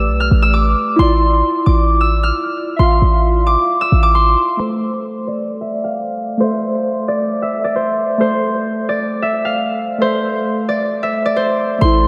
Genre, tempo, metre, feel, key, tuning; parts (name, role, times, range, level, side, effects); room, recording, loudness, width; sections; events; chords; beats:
hip hop, trap; 133 BPM; 4/4; half-time; A minor; A4 = 440 Hz
concert harp; melody; 0.0-12.1 s; C5 to F6; -19 LUFS; equal; low-pass filter, tape echo
warbly lo-fi synth keys; accompaniment; 0.0-12.1 s; A3 to F5; -22 LUFS; equal; chorus, low-pass filter
warm 808-style bass; bass; 0.0-4.4, 11.8-12.1 s; A1 to B1; -16 LUFS; equal
wet lush hall reverb, RT60 2.6 s; dreamy mix soaked in reverb; -16 LUFS; mono
0.0-4.6 A section; 4.6-11.8 B section
filter sweep 4.6-11.8
0.0 G/A; 1.0 Dmadd9/A; 4.6 Am
0.09 0.54 | 0.99 1.44 1.89 2.34 | 2.79 3.25 3.70 4.15 | 4.60 5.05 5.50 5.95 | 6.40 6.85 7.30 7.76 | 8.21 8.66 9.11 9.56 | 10.01 10.46 10.91 11.37 | 11.82